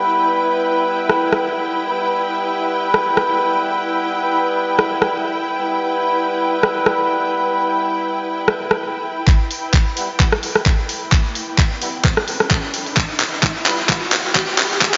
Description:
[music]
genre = bass house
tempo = 130 BPM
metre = 4/4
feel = swing 55% on 16ths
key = E minor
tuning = A4 = 440 Hz
[part]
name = dark horn section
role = stabs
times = 0.0-14.0 s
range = G3 to B4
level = -22 LUFS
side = equal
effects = sidechain pumping, low-pass filter, diffuse ambient delay
[part]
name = clear studio string section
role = texture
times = 0.0-15.0 s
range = E4 to G5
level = -25 LUFS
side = equal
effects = sidechain pumping
[part]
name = garage drum kit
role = drums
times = 1.1-15.0 s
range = handclaps, hi-hat, rim click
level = -21 LUFS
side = equal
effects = none
[part]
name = electronic kick drum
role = drums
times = 9.3-14.9 s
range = none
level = -18 LUFS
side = equal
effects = none
[part]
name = riser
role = sound effects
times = 11.2-15.0 s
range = none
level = -30 LUFS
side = equal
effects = none
[sound]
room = wet lush hall reverb, RT60 1.8 s, studio reverb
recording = dreamy mix soaked in reverb, high-pass filter, nothing above 7.5 kHz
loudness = -18 LUFS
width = mono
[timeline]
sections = 0.0-9.3 A section; 9.3-15.0 B section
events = build-up 9.3-15.0; drum fill 9.3-15.0; filter sweep 9.3-15.0; riser 11.2-15.0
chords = 0.0 Em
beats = | 0.04 0.51 0.97 1.43 | 1.89 2.35 2.81 3.28 | 3.74 4.20 4.66 5.12 | 5.58 6.04 6.51 6.97 | 7.43 7.89 8.35 8.81 | 9.28 9.74 10.20 10.66 | 11.12 11.58 12.04 12.51 | 12.97 13.43 13.89 14.35 | 14.81

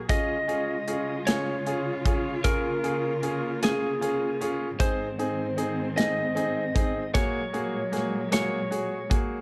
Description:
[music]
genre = six-eight pop ballad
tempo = 51 BPM (dotted quarters)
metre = 6/8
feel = straight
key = Db major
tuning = A4 = 441 Hz
[part]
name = dark symphonic string section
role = sustained chords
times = 0.0-9.4 s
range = Ab2 to F4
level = -36 LUFS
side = equal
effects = none
[part]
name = electric slide guitar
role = melody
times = 0.1-9.2 s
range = Ab4 to Eb5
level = -32 LUFS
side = equal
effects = analog delay
[part]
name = clear grand piano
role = accompaniment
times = 0.1-9.4 s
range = Bb3 to Ab4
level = -32 LUFS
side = equal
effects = none
[part]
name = modern studio drum kit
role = drums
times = 0.1-9.3 s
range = hi-hat, kick drum, snare drum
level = -30 LUFS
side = equal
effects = none
[sound]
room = light reverb, studio ambience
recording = none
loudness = -27 LUFS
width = mono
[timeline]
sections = 0.0-9.4 A section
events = none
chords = 0.1 Db; 4.8 Ab; 7.2 Gbadd9/Bb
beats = | 0.10 1.27 | 2.45 3.62 | 4.80 5.97 | 7.15 8.33

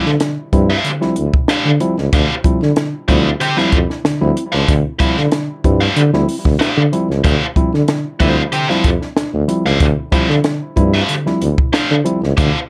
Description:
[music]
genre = funk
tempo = 94 BPM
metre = 4/4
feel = straight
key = D minor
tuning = A4 = 440 Hz
[part]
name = biting overdriven guitar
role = accompaniment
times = 0.0-12.6 s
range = G4 to G5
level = -20 LUFS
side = equal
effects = none
[part]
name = tine electric piano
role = stabs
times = 0.0-12.6 s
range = D3 to E4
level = -22 LUFS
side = equal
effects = tape echo
[part]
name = warm tuba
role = bass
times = 0.1-12.5 s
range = C#2 to D3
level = -18 LUFS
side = equal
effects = none
[part]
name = compact cocktail drum kit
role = drums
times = 0.1-12.5 s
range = hi-hat, kick drum, snare drum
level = -20 LUFS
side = equal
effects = none
[sound]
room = little or no reverb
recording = none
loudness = -15 LUFS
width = mono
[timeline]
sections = 0.0-12.7 A section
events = none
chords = 0.0 Dm11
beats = 0.20 0.84 1.48 | 2.12 2.76 3.40 4.04 | 4.68 5.32 5.96 6.60 | 7.24 7.88 8.52 9.16 | 9.81 10.45 11.09 11.73 | 12.37

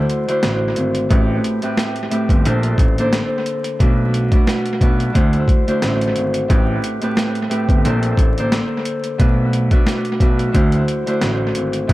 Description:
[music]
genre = hip hop, boom-bap hip-hop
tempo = 89 BPM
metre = 4/4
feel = swing 54% on 16ths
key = unclear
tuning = A4 = 440 Hz
[part]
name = Celtic harp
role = accompaniment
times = 0.0-11.9 s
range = A2 to C5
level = -19 LUFS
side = equal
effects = high-pass filter, low-pass filter, analog delay
[part]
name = boom bap sampler-style drum kit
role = drums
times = 0.1-11.9 s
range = hi-hat, kick drum, snare drum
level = -17 LUFS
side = equal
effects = overdrive, analog delay
[part]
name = dark baby grand piano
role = bass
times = 0.4-11.9 s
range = G1 to D2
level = -20 LUFS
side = equal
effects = none
[sound]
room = studio reverb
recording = echo-heavy mix, vinyl crackle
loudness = -15 LUFS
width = side -17 dB against mid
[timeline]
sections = 0.0-11.9 A section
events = none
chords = 0.0 D7; 1.1 Am7; 2.5 Bbmaj7; 3.8 Bm7; 5.2 D7; 6.5 Am7; 7.8 Bbmaj7; 9.2 Bm7; 10.5 D7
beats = 0.43 | 1.10 1.78 2.45 3.13 | 3.80 4.48 5.15 5.82 | 6.50 7.17 7.85 8.52 | 9.20 9.87 10.54 11.22 | 11.89

